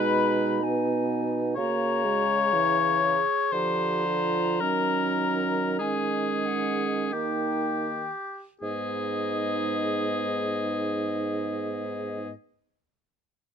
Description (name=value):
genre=classical, slow romantic movement for wind quintet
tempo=38-63 BPM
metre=3/4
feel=rubato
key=G# minor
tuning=A4 = 440 Hz
part: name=silver concert flute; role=melody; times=0.0-12.3 s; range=D#5 to B5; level=-34 LUFS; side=left 8 dB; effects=none
part: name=warm oboe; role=second line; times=0.0-12.3 s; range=G4 to C#5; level=-28 LUFS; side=left 5 dB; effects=none
part: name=mellow clarinet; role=accompaniment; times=0.0-12.3 s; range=C#4 to G#4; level=-32 LUFS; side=right 8 dB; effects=none
part: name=warm French horn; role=accompaniment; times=0.0-12.3 s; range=E3 to B3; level=-33 LUFS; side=right 1 dB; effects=none
part: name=mellow bassoon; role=bass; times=0.0-12.3 s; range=G#2 to D#3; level=-30 LUFS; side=right 4 dB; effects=none
room=light reverb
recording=close, detailed microphones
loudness=-24 LUFS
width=side -7 dB against mid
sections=0.0-8.6 A section; 8.6-13.2 B section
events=slowing down 0.1-8.6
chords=0.0 G#m/B; 1.6 A#m7b5/C#; 3.5 A#/D; 4.6 D#7sus4; 7.1 D#; 8.6 G#m